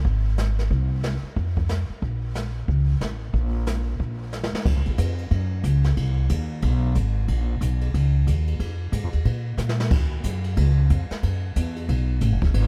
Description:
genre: jazz piano trio.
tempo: 183 BPM.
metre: 4/4.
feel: swing 62% on 8ths.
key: Bb minor, Eb minor from 4.7 s.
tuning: A4 = 440 Hz.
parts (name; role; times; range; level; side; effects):
upright bass; bass; 0.0-12.7 s; D#1 to Bb2; -24 LUFS; equal; none.
jazz brush drum kit; drums; 0.0-12.6 s; brushed snare drum, crash cymbal, hi-hat, kick drum, ride cymbal, snare drum; -31 LUFS; equal; none.
room: little or no reverb.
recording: none.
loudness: -24 LUFS.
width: mono.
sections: 0.0-4.7 A section; 4.7-12.7 B section.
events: drum fill 4.3-4.7, 9.6-9.9.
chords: none.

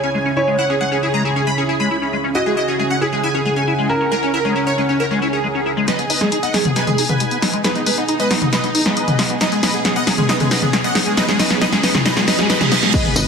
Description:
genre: uplifting trance.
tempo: 136 BPM.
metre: 4/4.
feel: straight.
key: G# minor.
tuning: A4 = 440 Hz.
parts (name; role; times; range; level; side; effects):
supersaw stab; melody; 0.0-13.2 s; C#4 to B5; -20 LUFS; right 1 dB; lush chorus, sidechain pumping, digital delay.
warm grand piano; second line; 0.0-5.8 s; F#4 to C#5; -23 LUFS; right 1 dB; tape echo.
lush unison pad; sustained chords; 0.0-13.3 s; C#3 to G#5; -24 LUFS; right 2 dB; chorus, phaser, sidechain pumping.
liquid acid bass; arpeggios; 0.0-13.2 s; G#3 to E4; -22 LUFS; left 3 dB; analog chorus, sidechain pumping, digital delay.
punchy analog drum machine; drums; 5.9-13.2 s; crash cymbal, hi-hat, snare drum, tambourine, toms; -17 LUFS; left 1 dB; none.
riser, reverse cymbal and impact; sound effects; 8.8-13.3 s; none; -26 LUFS; right 2 dB; none.
electronic kick drum; drums; 12.9-13.0 s; none; -19 LUFS; equal; overdrive.
plucky analog bass; bass; 13.2-13.3 s; G#1; -19 LUFS; equal; sidechain pumping.
room: moderate digital room reverb, RT60 1.3 s.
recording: dense, heavily limited modern master, lossy compression artefacts.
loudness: -15 LUFS.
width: side -6 dB against mid.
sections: 0.0-5.9 A section; 5.9-12.9 B section.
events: filter sweep on supersaw synth 0.0-5.9; build-up 5.9-12.9; drum fill 5.9-12.9; filter sweep on acid bass 5.9-12.9; reverse cymbal 12.1-12.9; impact 12.9-13.3.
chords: 0.0 C#m; 5.9 G#m.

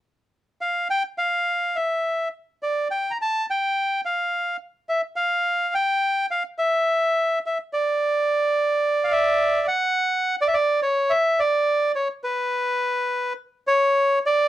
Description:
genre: tango.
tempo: 106 BPM.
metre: 4/4.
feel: rubato.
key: D minor, D major from 10.0 s.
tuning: A4 = 441 Hz.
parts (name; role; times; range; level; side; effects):
bandoneon; solo; 0.6-14.5 s; B4 to Bb5; -20 LUFS; equal; none.
room: light reverb.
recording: dry, close 1970s-style studio recording.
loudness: -20 LUFS.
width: side -13 dB against mid.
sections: 0.0-10.0 A section; 10.0-14.5 B section.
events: none.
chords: none.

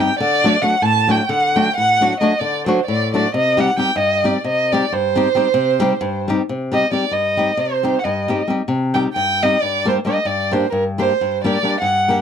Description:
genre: balkan folk.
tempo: 267 BPM (eighths).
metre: 7/8.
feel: straight.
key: C dorian sharp4.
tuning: A4 = 440 Hz.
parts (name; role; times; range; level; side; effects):
dark violin; melody; 0.0-12.2 s; Bb4 to A5; -17 LUFS; right 2 dB; none.
flamenco guitar; accompaniment; 0.0-12.2 s; G2 to G4; -19 LUFS; left 2 dB; none.
room: light reverb.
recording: close, detailed microphones.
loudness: -15 LUFS.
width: side -8 dB against mid.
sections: 0.0-6.5 A section; 6.5-12.2 B section.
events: violin solo 6.5-12.2.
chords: 0.2 D; 3.3 Cm; 9.6 Gm.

